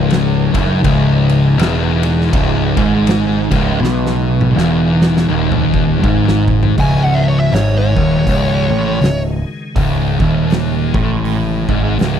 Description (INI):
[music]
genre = stoner and doom metal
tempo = 81 BPM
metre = 4/4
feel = swing 59% on 8ths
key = C# minor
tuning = A4 = 440 Hz
[part]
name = tonewheel organ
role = sustained chords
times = 0.0-12.2 s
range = C#3 to D#4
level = -27 LUFS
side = left 1 dB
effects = none
[part]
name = crunchy overdriven guitar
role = riff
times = 0.0-6.8 s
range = C#2 to B2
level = -20 LUFS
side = left 1 dB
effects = none
[part]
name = thick fuzz guitar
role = riff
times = 0.0-12.2 s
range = C#2 to B2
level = -18 LUFS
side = left 9 dB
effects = distortion
[part]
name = thick fuzz guitar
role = riff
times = 0.0-12.2 s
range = C#2 to B2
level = -18 LUFS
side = right 9 dB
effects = distortion
[part]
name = growling picked electric bass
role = bass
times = 0.0-12.2 s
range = C#1 to B1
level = -18 LUFS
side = equal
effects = overdrive
[part]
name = oversized low-tuned drum kit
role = drums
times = 0.1-12.2 s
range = hi-hat, kick drum, ride cymbal, snare drum, toms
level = -20 LUFS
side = equal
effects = none
[part]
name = fuzz lead guitar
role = melody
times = 6.8-9.2 s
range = C#5 to G#5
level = -19 LUFS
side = equal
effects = wah, distortion, slapback echo
[sound]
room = little or no reverb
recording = dry, close 1970s-style studio recording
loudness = -12 LUFS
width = side -9 dB against mid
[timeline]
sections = 0.0-6.8 A section; 6.8-12.2 B section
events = drum fill 3.8-6.8; lead electric guitar solo 6.8-12.2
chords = 0.0 C#m; 6.8 C#5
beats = 0.10 | 0.84 1.58 2.33 3.07 | 3.81 4.56 5.30 6.04 | 6.78 7.53 8.27 9.01 | 9.76 10.50 11.24 11.98